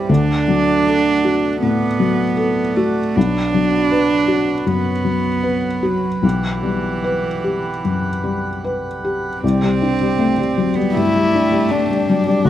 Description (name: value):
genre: neoclassical piano and strings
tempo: 78 BPM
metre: 4/4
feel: uneven beats, rubato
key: unclear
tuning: A4 = 440 Hz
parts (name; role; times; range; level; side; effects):
- warm cello; second line; 0.0-12.5 s; E3 to D4; -20 LUFS; right 5 dB; none
- felt-muted upright piano; accompaniment; 0.0-12.5 s; B1 to C5; -18 LUFS; left 3 dB; none
- hand-pumped harmonium; sustained chords; 0.0-12.5 s; F#3 to F#5; -26 LUFS; right 2 dB; none
- dark violin; melody; 10.9-12.5 s; D4 to F#4; -17 LUFS; left 3 dB; none
room: little or no reverb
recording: recorded outdoors, with no room sound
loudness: -15 LUFS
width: side -12 dB against mid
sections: 0.0-9.4 A section; 9.4-12.5 A section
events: none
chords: 0.1 D; 3.2 Bm; 6.2 Emadd9/B; 9.4 Csus2